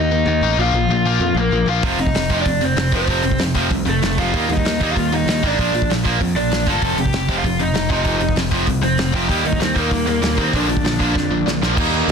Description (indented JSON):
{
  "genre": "punk rock",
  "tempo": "193 BPM",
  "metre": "4/4",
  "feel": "straight",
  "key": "unclear",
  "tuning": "A4 = 442 Hz",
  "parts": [
    { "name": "raw garage guitar", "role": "melody", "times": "0.0-11.5 s", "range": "A3 to A5", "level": "-22 LUFS", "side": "equal", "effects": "overdrive" },
    { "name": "tight distorted guitar", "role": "riff", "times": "0.0-12.1 s", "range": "F2 to Eb4", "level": "-22 LUFS", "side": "left 13 dB", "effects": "distortion" },
    { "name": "modern bright picked electric bass", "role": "bass", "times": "0.0-12.1 s", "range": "F1 to F2", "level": "-22 LUFS", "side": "right 1 dB", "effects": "none" },
    { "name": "distorted electric guitar", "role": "riff", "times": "1.8-12.1 s", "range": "F2 to Eb4", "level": "-22 LUFS", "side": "right 16 dB", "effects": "overdrive" },
    { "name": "loose indie drum kit", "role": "drums", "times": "1.8-12.1 s", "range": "crash cymbal, hi-hat, kick drum, snare drum", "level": "-23 LUFS", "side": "equal", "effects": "none" }
  ],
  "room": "light reverb",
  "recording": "dense, heavily limited modern master",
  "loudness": "-16 LUFS",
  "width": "side -6 dB against mid",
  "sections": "0.0-11.8 A section",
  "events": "drum fill 11.2-11.8",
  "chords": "0.0 Eb5; 0.6 Bb5; 1.8 F; 4.3 Eb; 5.6 Bb; 6.8 F5; 9.3 Eb; 10.5 Bb"
}